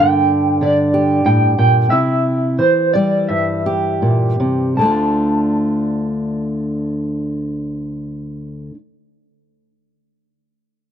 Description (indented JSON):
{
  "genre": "folk",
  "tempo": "77-96 BPM",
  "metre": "4/4",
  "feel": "straight",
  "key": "D minor",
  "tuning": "A4 = 440 Hz",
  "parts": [
    { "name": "electric guitar through a small old amp", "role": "melody", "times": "0.0-8.7 s", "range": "C5 to A5", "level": "-17 LUFS", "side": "right 1 dB", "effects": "tremolo" },
    { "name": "fingerpicked steel-string acoustic guitar", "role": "accompaniment", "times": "0.0-8.8 s", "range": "D2 to G4", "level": "-16 LUFS", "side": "equal", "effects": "none" }
  ],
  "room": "small room reverb",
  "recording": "dry, close 1970s-style studio recording",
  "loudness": "-14 LUFS",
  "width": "side -9 dB against mid",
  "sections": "0.0-4.8 A section; 4.8-7.9 B section",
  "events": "slowing down 0.0-4.8",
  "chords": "0.0 Gm; 1.9 C; 4.8 Dm",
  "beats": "0.62 1.27 | 1.92 2.60 3.29 4.02 | 4.78 5.55 6.33 7.11"
}